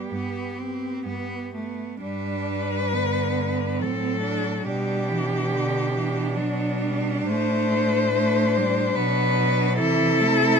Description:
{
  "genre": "classical, lyrical piece for cello ensemble",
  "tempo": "69 BPM",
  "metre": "3/4",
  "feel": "uneven beats, rubato",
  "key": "G major",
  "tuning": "A4 = 440 Hz",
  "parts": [
    { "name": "rich cello", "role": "melody", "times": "0.0-10.6 s", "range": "D4 to C5", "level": "-25 LUFS", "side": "left 5 dB", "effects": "none" },
    { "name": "rich cello", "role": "second line", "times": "0.0-10.6 s", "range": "B3 to E4", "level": "-28 LUFS", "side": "right 10 dB", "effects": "none" },
    { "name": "rich cello", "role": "accompaniment", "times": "0.1-10.6 s", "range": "D3 to C4", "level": "-28 LUFS", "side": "left 1 dB", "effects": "none" },
    { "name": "rich cello", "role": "bass", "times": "0.1-10.6 s", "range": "G2 to C3", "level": "-28 LUFS", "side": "right 2 dB", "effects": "none" }
  ],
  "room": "light reverb",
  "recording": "close, detailed microphones",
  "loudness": "-21 LUFS",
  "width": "side -6 dB against mid",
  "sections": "0.0-2.0 A section; 2.0-10.6 B section",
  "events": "none",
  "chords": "0.0 G; 4.7 G/B; 7.3 Am; 9.8 Am/C",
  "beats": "0.12 1.05 | 2.02 2.93 3.81 | 4.67 5.52 6.36 | 7.29 8.15 8.98 | 9.79"
}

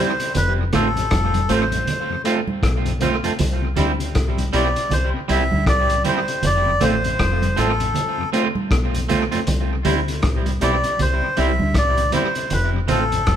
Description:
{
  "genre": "roots reggae",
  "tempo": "79 BPM",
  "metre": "4/4",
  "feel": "swing 60% on 16ths",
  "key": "C major",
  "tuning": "A4 = 439 Hz",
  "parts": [
    { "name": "melodica", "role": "melody", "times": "0.0-13.4 s", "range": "A4 to E5", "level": "-22 LUFS", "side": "left 1 dB", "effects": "none" },
    { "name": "electric guitar at the edge of break-up", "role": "accompaniment", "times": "0.0-13.0 s", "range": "G3 to F4", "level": "-24 LUFS", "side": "right 5 dB", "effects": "tape echo" },
    { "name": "mellow tonewheel organ", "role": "accompaniment", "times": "0.0-13.2 s", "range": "F2 to F4", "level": "-29 LUFS", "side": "left 4 dB", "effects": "slow rotary speaker, tape echo" },
    { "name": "vintage drum kit", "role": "drums", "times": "0.2-13.4 s", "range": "hi-hat, kick drum, rim click", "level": "-26 LUFS", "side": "left 1 dB", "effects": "tape echo" },
    { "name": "deep dub fingered electric bass", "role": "bass", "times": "0.4-13.4 s", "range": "F1 to D2", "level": "-22 LUFS", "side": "left 1 dB", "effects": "none" },
    { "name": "congas", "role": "percussion", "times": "0.4-13.4 s", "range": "none", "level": "-27 LUFS", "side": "right 4 dB", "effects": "tape echo" }
  ],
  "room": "moderate large studio reverb, RT60 1.4 s",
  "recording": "band playing live in one room",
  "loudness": "-17 LUFS",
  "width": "side -9 dB against mid",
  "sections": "0.0-13.4 A section",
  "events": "none",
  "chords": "0.3 F; 3.4 C; 6.4 F; 9.5 C; 12.5 F",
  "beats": "| 0.35 1.11 1.87 2.63 | 3.39 4.15 4.91 5.67 | 6.43 7.19 7.95 8.71 | 9.47 10.23 10.99 11.75 | 12.51 13.27"
}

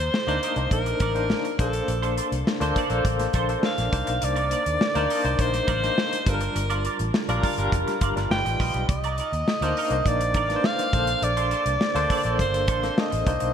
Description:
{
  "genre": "polished 1980s jazz-funk pop",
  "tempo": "103 BPM",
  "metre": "4/4",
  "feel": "straight",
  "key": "C dorian",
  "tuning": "A4 = 439 Hz",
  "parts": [
    { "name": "bright alto saxophone", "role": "melody", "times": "0.0-13.5 s", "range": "A4 to G5", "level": "-26 LUFS", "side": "right 1 dB", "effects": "none" },
    { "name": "clean electric guitar", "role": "riff", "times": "0.0-13.4 s", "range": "D4 to F5", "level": "-33 LUFS", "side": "right 6 dB", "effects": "analog chorus" },
    { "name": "vintage muted fingered electric bass", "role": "bass", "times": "0.0-13.5 s", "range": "F1 to Eb2", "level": "-28 LUFS", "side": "equal", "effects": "none" },
    { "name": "modern studio drum kit", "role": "drums", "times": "0.1-13.5 s", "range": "hi-hat, kick drum, snare drum", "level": "-27 LUFS", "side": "equal", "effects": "none" },
    { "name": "barky tine electric piano", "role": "accompaniment", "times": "0.3-13.5 s", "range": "G3 to C5", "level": "-27 LUFS", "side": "left 2 dB", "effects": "medium tremolo, wide subtle chorus" }
  ],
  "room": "moderate lush hall reverb, RT60 2.0 s",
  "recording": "bright 1980s-style digital production",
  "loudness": "-21 LUFS",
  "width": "side -8 dB against mid",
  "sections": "0.0-13.5 A section",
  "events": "none",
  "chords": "0.0 Cm9; 1.6 Bbmaj9; 3.9 Cm9; 6.3 Gm7; 8.3 G7alt; 8.9 Cm9; 10.9 Bbmaj9",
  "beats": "0.13 0.72 1.30 | 1.89 2.47 3.05 3.64 | 4.22 4.80 5.39 5.97 | 6.55 7.14 7.72 8.31 | 8.89 9.47 10.05 10.64 | 11.22 11.80 12.38 12.97"
}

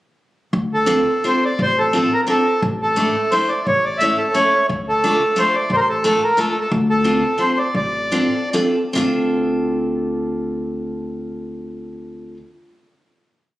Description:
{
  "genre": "musette waltz",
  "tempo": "136-181 BPM",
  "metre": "3/4",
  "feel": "straight",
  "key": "D minor",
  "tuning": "A4 = 438 Hz",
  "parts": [
    { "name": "upright bass", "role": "bass", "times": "0.5-12.4 s", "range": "A1 to D2", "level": "-24 LUFS", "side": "left 1 dB", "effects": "none" },
    { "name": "accordion", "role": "melody", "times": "0.7-8.5 s", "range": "A4 to E5", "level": "-17 LUFS", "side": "equal", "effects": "none" },
    { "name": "picked steel-string acoustic guitar", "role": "accompaniment", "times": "0.9-12.4 s", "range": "A3 to A4", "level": "-21 LUFS", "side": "equal", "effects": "none" }
  ],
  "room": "moderate recital hall reverb, RT60 1.7 s",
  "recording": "recorded on a phone in the room, club ambience",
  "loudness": "-16 LUFS",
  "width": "side -16 dB against mid",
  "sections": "0.5-9.0 A section; 9.0-11.6 final chord",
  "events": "slowing down 6.7-9.0",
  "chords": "0.5 Dm7; 2.6 Asus4; 3.7 A; 4.7 Dm; 6.7 Dm7",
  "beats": "| 0.54 0.90 1.25 | 1.60 1.95 2.29 | 2.64 2.98 3.32 | 3.66 4.00 4.35 | 4.69 5.03 5.37 | 5.71 6.04 6.38 | 6.71 7.05 7.39 | 7.75 8.13 8.53 | 8.96 9.40 9.84 | 10.28 10.71 11.15"
}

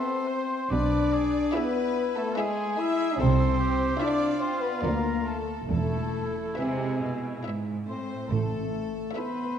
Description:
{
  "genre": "classical, slow romantic movement for symphony orchestra",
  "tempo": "71 BPM",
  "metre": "3/4",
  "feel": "rubato",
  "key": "A minor",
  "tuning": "A4 = 440 Hz",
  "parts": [
    { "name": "clear studio violin section", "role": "melody", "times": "0.0-9.6 s", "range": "D5 to E5", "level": "-40 LUFS", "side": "left 4 dB", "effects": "none" },
    { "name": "clear oboe", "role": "second line", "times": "0.0-9.6 s", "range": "E4 to C5", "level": "-37 LUFS", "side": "right 2 dB", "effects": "none" },
    { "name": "rich symphonic violin section", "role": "second line", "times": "0.0-9.6 s", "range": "G#4 to E5", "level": "-38 LUFS", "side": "left 1 dB", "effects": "none" },
    { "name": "silver concert flute", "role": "second line", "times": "0.0-9.6 s", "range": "G#5 to E6", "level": "-35 LUFS", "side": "equal", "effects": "none" },
    { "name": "rich studio viola section", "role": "accompaniment", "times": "0.0-9.6 s", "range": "E4 to B4", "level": "-38 LUFS", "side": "right 3 dB", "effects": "none" },
    { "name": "mellow French horn section", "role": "sustained chords", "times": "0.0-9.6 s", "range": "G#3 to E4", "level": "-28 LUFS", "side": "left 3 dB", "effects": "none" },
    { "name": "rich studio cello section", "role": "bass", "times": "0.7-9.0 s", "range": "D2 to C3", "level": "-31 LUFS", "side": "right 2 dB", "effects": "none" },
    { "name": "rich studio double bass section", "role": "bass", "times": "0.7-9.0 s", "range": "E1 to D2", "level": "-29 LUFS", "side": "right 3 dB", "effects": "none" },
    { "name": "timpani", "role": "percussion", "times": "5.7-9.5 s", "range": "E2 to A2", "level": "-38 LUFS", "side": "right 1 dB", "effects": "none" }
  ],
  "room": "wet concert hall reverb, RT60 1.9 s",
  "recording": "dark, warm production",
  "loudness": "-25 LUFS",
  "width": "side -8 dB against mid",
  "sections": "0.0-9.6 A section",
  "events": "none",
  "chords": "0.0 Am; 0.7 E7/B; 3.2 Am/C; 4.8 Bb/D; 5.7 E; 8.3 Am",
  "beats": "| 0.71 1.55 2.38 | 3.20 3.99 4.83 | 5.69 6.56 7.44 | 8.30 9.14"
}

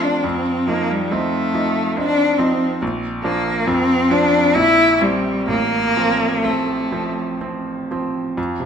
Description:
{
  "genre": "classical, romantic duo for cello and grand piano",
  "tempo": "61-71 BPM",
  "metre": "3/4",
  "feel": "rubato",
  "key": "F major",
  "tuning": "A4 = 440 Hz",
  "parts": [
    { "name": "rich cello", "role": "melody", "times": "0.0-7.4 s", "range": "G3 to E4", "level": "-17 LUFS", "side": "left 1 dB", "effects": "none" },
    { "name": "bright grand piano", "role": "accompaniment", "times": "0.0-8.7 s", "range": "A1 to Eb4", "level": "-21 LUFS", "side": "right 2 dB", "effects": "none" }
  ],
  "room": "wet recital hall reverb, RT60 1.3 s",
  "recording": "none",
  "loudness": "-16 LUFS",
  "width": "side -7 dB against mid",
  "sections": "0.0-8.4 A section",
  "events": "none",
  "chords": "0.2 F7; 2.8 Bb; 3.7 F5; 4.5 C7/Bb; 5.5 F/A",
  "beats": "| 0.24 1.11 1.96 | 2.82 3.67 4.55 | 5.48 6.44 7.42 | 8.38"
}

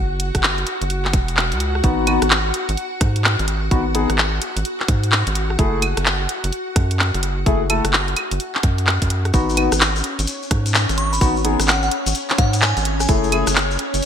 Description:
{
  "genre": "UK garage, two-step garage",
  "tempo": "128 BPM",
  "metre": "4/4",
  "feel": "swing 64% on 16ths",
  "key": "G# phrygian",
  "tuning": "A4 = 441 Hz",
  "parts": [
    { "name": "soft string machine", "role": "sustained chords", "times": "0.0-14.1 s", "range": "C#4 to F#5", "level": "-27 LUFS", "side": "equal", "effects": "ensemble chorus, sidechain pumping" },
    { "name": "rubbery square bass", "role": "bass", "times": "0.0-14.0 s", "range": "E1 to G#2", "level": "-21 LUFS", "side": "equal", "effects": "none" },
    { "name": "garage drum kit", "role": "drums", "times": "0.2-14.1 s", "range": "claves, handclaps, hi-hat, rim click", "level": "-20 LUFS", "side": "equal", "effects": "gated reverb" },
    { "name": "electronic kick drum", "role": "drums", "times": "0.3-13.2 s", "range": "none", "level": "-18 LUFS", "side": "equal", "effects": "none" },
    { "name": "dark concert grand piano", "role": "stabs", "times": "1.8-13.4 s", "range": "A3 to A4", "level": "-22 LUFS", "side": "left 3 dB", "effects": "wide subtle chorus, ping-pong delay" },
    { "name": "shekere", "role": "percussion", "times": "9.3-14.1 s", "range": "none", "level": "-27 LUFS", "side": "left 5 dB", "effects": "none" },
    { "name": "glassy synth bell", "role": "melody", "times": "11.0-13.2 s", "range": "F#5 to C#6", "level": "-25 LUFS", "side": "equal", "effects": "chorus, ping-pong delay" }
  ],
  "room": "light reverb",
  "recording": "bright 1980s-style digital production",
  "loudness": "-16 LUFS",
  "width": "side -8 dB against mid",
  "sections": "0.0-14.1 A section",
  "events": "none",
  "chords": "0.0 F#7(no3); 1.8 G#m7; 5.6 F#m; 9.3 G#m; 13.1 F#m7",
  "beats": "0.43 0.90 1.37 | 1.84 2.31 2.78 3.24 | 3.71 4.18 4.65 5.12 | 5.59 6.06 6.53 6.99 | 7.46 7.93 8.40 8.87 | 9.34 9.81 10.28 10.74 | 11.21 11.68 12.15 12.62 | 13.09 13.56 14.03"
}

